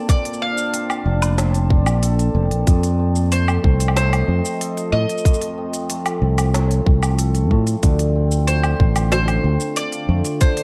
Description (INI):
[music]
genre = folktronica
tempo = 93 BPM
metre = 4/4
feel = straight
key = unclear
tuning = A4 = 443 Hz
[part]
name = bowl-back mandolin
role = melody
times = 0.0-10.6 s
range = C5 to F5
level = -27 LUFS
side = equal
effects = digital delay
[part]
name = warbly tape-like pad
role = sustained chords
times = 0.0-10.6 s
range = D3 to A5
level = -32 LUFS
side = equal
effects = chorus, built-in reverb
[part]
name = cimbalom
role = arpeggios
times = 0.0-10.6 s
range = F2 to A4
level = -28 LUFS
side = equal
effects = digital delay
[part]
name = electronic kick drum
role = drums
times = 0.1-10.5 s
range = none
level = -18 LUFS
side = equal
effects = none
[part]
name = organic electronic drum kit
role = drums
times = 0.1-10.6 s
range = hi-hat, shaker, snare drum, woodblock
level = -29 LUFS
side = equal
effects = none
[part]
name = fingered electric bass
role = bass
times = 1.1-10.2 s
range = F1 to A2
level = -20 LUFS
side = equal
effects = none
[sound]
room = little or no reverb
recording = dark, warm production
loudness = -18 LUFS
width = mono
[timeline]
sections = 0.0-10.6 A section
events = none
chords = 0.0 Bbmaj9; 2.7 F7; 7.8 Dm7